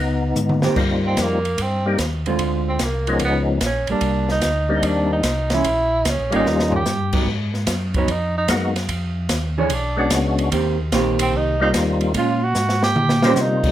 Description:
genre	soul jazz organ trio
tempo	148 BPM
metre	4/4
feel	swing 67% on 8ths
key	Eb major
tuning	A4 = 440 Hz
part	percussive tonewheel organ	melody	0.0-13.7 s	F3 to G4	-21 LUFS	left 2 dB	slow rotary speaker, chorus vibrato
part	mellow tonewheel organ	bass	0.0-13.7 s	Ab1 to C3	-23 LUFS	equal	chorus vibrato, slow rotary speaker
part	open jazz drum kit	drums	0.4-13.7 s	crash cymbal, hi-hat, kick drum, ride cymbal, snare drum, toms	-24 LUFS	equal	none
part	hollow-body jazz guitar	accompaniment	0.6-13.4 s	D3 to Db5	-22 LUFS	right 4 dB	none
part	breathy tenor saxophone	melody	1.1-13.7 s	Bb3 to G4	-22 LUFS	right 2 dB	none
room	moderate club reverb, RT60 0.5 s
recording	none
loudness	-17 LUFS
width	side -12 dB against mid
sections	0.8-13.7 A section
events	drum fill 0.4-0.8, 6.5-6.9, 12.6-13.4; tenor saxophone solo 0.8-13.7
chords	0.0 Dbsus2; 0.8 Eb6; 2.4 Dm7b5; 3.2 Db9; 4.0 Cm7; 5.6 Bbm7b5; 6.5 Eb7; 7.3 Abm7; 8.9 Fm7; 9.7 Bm69; 10.5 Eb6; 12.1 Bbm7; 13.0 Eb13

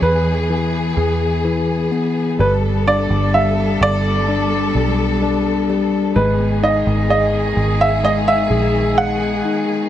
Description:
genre	pop ballad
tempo	64 BPM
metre	4/4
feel	straight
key	unclear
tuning	A4 = 440 Hz
part	warm baby grand piano	melody	0.0-9.6 s	B4 to F#5	-19 LUFS	right 2 dB	ping-pong delay
part	bright tine electric piano	accompaniment	0.0-9.9 s	E3 to G#4	-20 LUFS	left 4 dB	none
part	warm studio string section	sustained chords	0.0-9.9 s	D#3 to A4	-23 LUFS	equal	none
part	vintage muted fingered electric bass	bass	0.0-9.4 s	G1 to E2	-20 LUFS	right 1 dB	none
room	light reverb, studio ambience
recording	none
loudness	-15 LUFS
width	side -11 dB against mid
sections	0.0-9.9 A section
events	none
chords	0.0 E; 2.4 Gadd9; 6.2 G#m

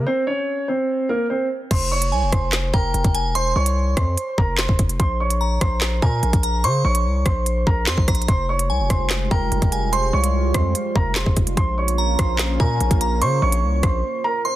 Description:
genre	hip hop, drill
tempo	146 BPM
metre	4/4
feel	half-time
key	F minor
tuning	A4 = 442 Hz
part	dark concert grand piano	melody	0.0-14.6 s	Bb3 to Db6	-24 LUFS	right 2 dB	tape echo
part	distorted 808-style bass	bass	0.0-14.0 s	E1 to Db3	-21 LUFS	equal	distortion
part	drill drum kit	drums	1.7-13.9 s	crash cymbal, handclaps, hi-hat, kick drum, rim click, snare drum	-20 LUFS	equal	none
part	glassy synth bell	second line	2.1-14.6 s	G5 to Db6	-27 LUFS	right 1 dB	chorus, phaser, tape echo
part	dark analog pad	sustained chords	8.7-14.6 s	G3 to F4	-29 LUFS	right 3 dB	chorus
room	little or no reverb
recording	dense, heavily limited modern master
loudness	-18 LUFS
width	side -14 dB against mid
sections	0.0-1.7 A section; 1.7-14.6 B section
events	break 0.1-1.7, 14.0-14.6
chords	0.0 N.C.; 1.7 Fm; 5.0 Bbm; 8.3 Fmadd9; 11.6 Bbm

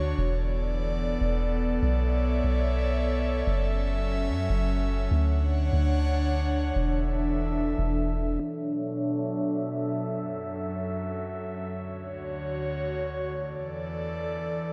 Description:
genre	hip hop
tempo	free time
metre	none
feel	none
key	B minor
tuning	A4 = 440 Hz
part	airy breathy pad	sustained chords	0.0-14.7 s	D2 to F#5	-31 LUFS	equal	chorus, low-pass filter
part	soft 808-style bass	bass	0.0-8.4 s	E1 to F#2	-28 LUFS	equal	none
room	light reverb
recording	none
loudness	-28 LUFS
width	mono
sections	0.0-8.4 A section; 8.4-14.7 B section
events	filter sweep on analog synth pad 8.4-14.7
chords	0.2 E7sus4; 1.8 Bm11; 3.5 F#m7; 5.1 Dmaj7; 6.8 E7sus4; 8.4 Bm11; 10.0 F#m7; 11.7 Dmaj7; 13.3 E7sus4

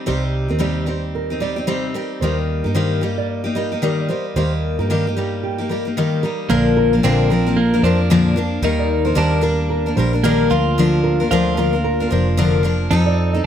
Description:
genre	acoustic pop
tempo	112 BPM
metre	4/4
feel	swing 60% on 16ths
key	Bb major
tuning	A4 = 440 Hz
part	picked steel-string acoustic guitar	accompaniment	0.0-13.5 s	Bb2 to Bb4	-19 LUFS	left 3 dB	none
part	nylon-string guitar	arpeggios	0.1-13.5 s	G4 to Eb5	-26 LUFS	right 5 dB	none
part	vintage muted fingered electric bass	bass	0.1-13.4 s	F1 to G2	-21 LUFS	right 1 dB	none
part	twelve-string electric guitar	second line	6.5-13.4 s	Bb3 to F4	-22 LUFS	right 4 dB	none
room	light reverb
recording	none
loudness	-16 LUFS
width	side -9 dB against mid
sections	0.0-6.5 A section; 6.5-13.5 B section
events	none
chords	0.0 Cm; 2.2 Eb; 6.5 Bb; 8.6 Ebmaj7; 10.5 Bb/D; 12.9 F7

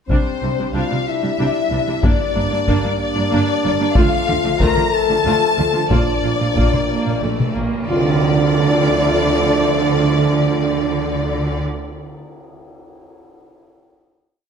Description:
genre	cinematic, epic orchestral film score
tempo	62 BPM (dotted quarters)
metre	6/8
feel	straight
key	D minor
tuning	A4 = 439 Hz
part	warm symphonic violin section	melody	0.1-11.6 s	C5 to Bb5	-24 LUFS	left 5 dB	none
part	rich chamber violin section	second line	0.1-11.6 s	C5 to Bb5	-26 LUFS	left 3 dB	none
part	warm symphonic viola section	accompaniment	0.1-11.6 s	G3 to F4	-24 LUFS	right 2 dB	none
part	dark French horn section	sustained chords	0.1-11.6 s	C4 to Bb4	-22 LUFS	left 3 dB	none
part	warm trombone section	sustained chords	0.1-11.6 s	Bb2 to D4	-27 LUFS	right 5 dB	none
part	dark symphonic cello section	bass	0.1-11.6 s	G2 to D3	-23 LUFS	right 3 dB	none
part	rich symphonic double bass section	bass	0.1-11.6 s	G1 to D2	-23 LUFS	right 4 dB	none
part	taiko ensemble	drums	0.1-7.7 s	none	-20 LUFS	left 1 dB	none
part	cymbal swell and tam-tam	percussion	4.0-10.4 s	none	-29 LUFS	left 1 dB	none
room	moderate scoring stage reverb, RT60 1.8 s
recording	none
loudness	-15 LUFS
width	side -7 dB against mid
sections	0.1-7.9 theme; 7.9-11.8 final chord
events	band accent 7.9-8.5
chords	0.1 Csus2; 2.0 Gm; 4.0 Dm; 5.9 Bb; 7.9 Dm

